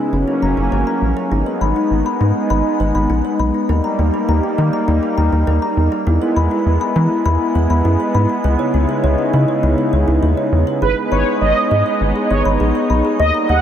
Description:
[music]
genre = pop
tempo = 101 BPM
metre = 4/4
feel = straight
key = G# minor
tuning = A4 = 440 Hz
[part]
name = warm analog pad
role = sustained chords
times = 0.0-13.6 s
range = C#3 to E4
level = -18 LUFS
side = right 1 dB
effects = lush chorus
[part]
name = kalimba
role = arpeggios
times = 0.0-13.6 s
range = C#4 to B5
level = -21 LUFS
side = left 3 dB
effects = analog delay
[part]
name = rubbery square bass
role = bass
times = 0.1-13.6 s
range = F#1 to E3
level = -16 LUFS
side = equal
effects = none
[part]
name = mellow synth brass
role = second line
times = 10.8-13.6 s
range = B4 to F#5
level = -17 LUFS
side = right 1 dB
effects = chorus, analog delay
[sound]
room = wet huge ambient reverb, RT60 7.4 s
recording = dreamy mix soaked in reverb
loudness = -14 LUFS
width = side -10 dB against mid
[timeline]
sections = 0.0-1.3 A section; 1.3-10.8 B section; 10.8-13.6 C section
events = none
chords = 0.1 F#; 1.3 G#m; 3.7 D#; 6.1 E; 8.4 C#m7; 10.8 G#m

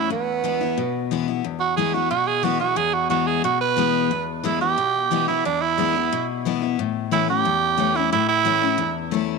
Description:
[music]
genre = rock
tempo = 180 BPM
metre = 4/4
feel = straight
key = E major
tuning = A4 = 438 Hz
[part]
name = raspy tenor saxophone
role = melody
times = 0.0-8.9 s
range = B3 to B4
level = -21 LUFS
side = right 9 dB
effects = tape echo
[part]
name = picked steel-string acoustic guitar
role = accompaniment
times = 0.0-9.4 s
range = E2 to E4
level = -24 LUFS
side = left 13 dB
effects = none
[sound]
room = moderate plate reverb, RT60 3.4 s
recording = 1960s-style stereo with parts hard left and right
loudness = -19 LUFS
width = side -4 dB against mid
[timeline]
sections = 0.0-1.4 A section; 1.4-9.4 B section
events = tenor saxophone solo 1.4-9.4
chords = 0.1 E; 6.8 A

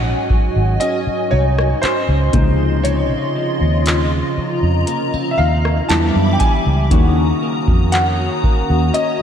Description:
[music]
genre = contemporary R&B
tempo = 59 BPM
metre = 4/4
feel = straight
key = unclear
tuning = A4 = 439 Hz
[part]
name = warm baby grand piano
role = melody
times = 0.0-9.2 s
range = C5 to A5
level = -22 LUFS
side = left 1 dB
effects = analog chorus, diffuse ambient delay
[part]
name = felt-muted upright piano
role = accompaniment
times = 0.0-9.2 s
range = C3 to Gb4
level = -24 LUFS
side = left 4 dB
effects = wide subtle chorus
[part]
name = hollow soft pad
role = sustained chords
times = 0.0-9.2 s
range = G3 to Eb6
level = -22 LUFS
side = left 1 dB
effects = ensemble chorus
[part]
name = direct-recorded clean electric guitar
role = arpeggios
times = 0.0-9.2 s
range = Ab2 to G4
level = -24 LUFS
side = right 5 dB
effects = ensemble chorus, diffuse ambient delay
[part]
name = vintage muted fingered electric bass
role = bass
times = 0.0-8.9 s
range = Ab1 to Gb2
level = -17 LUFS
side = equal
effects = none
[part]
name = booming analog drum machine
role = drums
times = 0.3-9.2 s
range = handclaps, hi-hat, kick drum, rim click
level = -19 LUFS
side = equal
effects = none
[sound]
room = moderate lush hall reverb, RT60 2.5 s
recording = dreamy mix soaked in reverb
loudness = -14 LUFS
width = side -8 dB against mid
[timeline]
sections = 0.0-9.2 A section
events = none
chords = 0.0 Ab7sus4; 2.3 Dbmaj9; 5.9 Em7; 6.9 Ebm7

